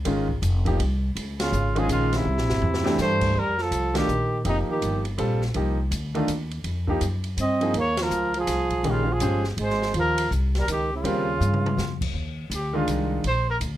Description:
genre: modal jazz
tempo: 164 BPM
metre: 3/4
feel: swing 63% on 8ths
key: unclear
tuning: A4 = 442 Hz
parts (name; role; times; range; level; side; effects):
- upright bass; bass; 0.0-13.8 s; E#1 to G2; -26 LUFS; equal; none
- clear grand piano; accompaniment; 0.1-13.2 s; D#3 to C5; -26 LUFS; equal; none
- open jazz drum kit; drums; 0.1-13.7 s; crash cymbal, hi-hat, kick drum, ride cymbal, snare drum, toms; -33 LUFS; equal; none
- mellow trumpet; melody; 1.4-5.0, 7.4-13.6 s; Eb4 to Eb5; -27 LUFS; equal; none
- clear trombone; second line; 1.4-5.0, 7.4-12.0 s; C3 to C4; -28 LUFS; right 3 dB; none
room: light reverb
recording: dark, warm production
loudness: -22 LUFS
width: side -13 dB against mid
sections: 0.0-3.4 A section; 3.4-12.1 B section; 12.1-13.8 C section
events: band accent 1.3, 3.9, 7.9; drum fill 2.3-3.0, 11.4-11.8; trumpet solo 12.1-13.8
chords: 0.0 C#maj9; 2.3 C69; 3.4 F9sus4; 7.8 Eb9sus4; 12.1 Ebmaj7sus2

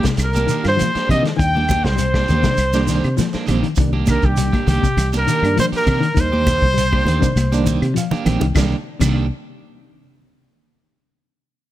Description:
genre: afrobeat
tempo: 100 BPM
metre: 4/4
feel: straight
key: C minor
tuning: A4 = 440 Hz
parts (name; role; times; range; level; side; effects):
- clear trumpet; melody; 0.0-8.0 s; G4 to G5; -22 LUFS; left 1 dB; none
- clear alto saxophone; second line; 0.0-8.0 s; G4 to G5; -26 LUFS; right 3 dB; none
- semi-hollow electric guitar; arpeggios; 0.0-9.2 s; C3 to G3; -25 LUFS; left 7 dB; spring reverb, slapback echo
- electric guitar at the edge of break-up; stabs; 0.0-9.3 s; Eb3 to G4; -26 LUFS; right 7 dB; none
- fingered electric bass; bass; 0.0-9.3 s; Bb1 to C3; -20 LUFS; equal; none
- vintage drum kit; drums; 0.0-9.2 s; crash cymbal, hi-hat, kick drum, snare drum; -22 LUFS; equal; none
- shekere; percussion; 0.1-9.2 s; none; -27 LUFS; right 4 dB; none
- claves; percussion; 0.2-9.2 s; none; -33 LUFS; left 2 dB; none
- congas; percussion; 0.4-9.2 s; none; -23 LUFS; right 1 dB; none
- reed electric piano; accompaniment; 0.6-9.3 s; Eb3 to G5; -25 LUFS; right 5 dB; fast tremolo
room: studio reverb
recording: none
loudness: -15 LUFS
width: side -13 dB against mid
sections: 0.0-8.6 A section; 8.6-11.0 B section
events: drum fill 7.4-8.6; reed electric piano fill 7.7-8.6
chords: 0.0 Cm9

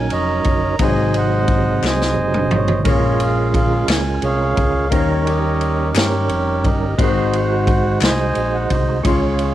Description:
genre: slow gospel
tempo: 58 BPM (dotted quarters)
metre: 6/8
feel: straight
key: unclear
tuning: A4 = 438 Hz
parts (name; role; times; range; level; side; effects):
- mellow accordion; melody; 0.0-9.5 s; F4 to Bb5; -20 LUFS; right 2 dB; cassette tape
- warm grand piano; accompaniment; 0.0-9.5 s; Ab2 to C6; -25 LUFS; left 9 dB; none
- percussive tonewheel organ; sustained chords; 0.0-9.5 s; C3 to Db5; -23 LUFS; right 7 dB; slow rotary speaker, overdrive, chorus vibrato
- fingered electric bass; bass; 0.0-9.5 s; F1 to G2; -21 LUFS; left 1 dB; none
- swinging big-band drum kit; drums; 0.1-9.5 s; kick drum, ride cymbal, snare drum, toms; -20 LUFS; equal; cassette tape
- group handclap; percussion; 1.8-8.3 s; none; -26 LUFS; left 11 dB; none
room: light reverb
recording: home recording on cassette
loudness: -15 LUFS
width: side -13 dB against mid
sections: 0.0-9.5 A section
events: drum fill 1.8-2.9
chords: 0.0 Gb6; 0.8 Ab7; 2.9 Bbm7; 4.9 Eb7; 7.0 Ab7; 9.0 Dbmaj7

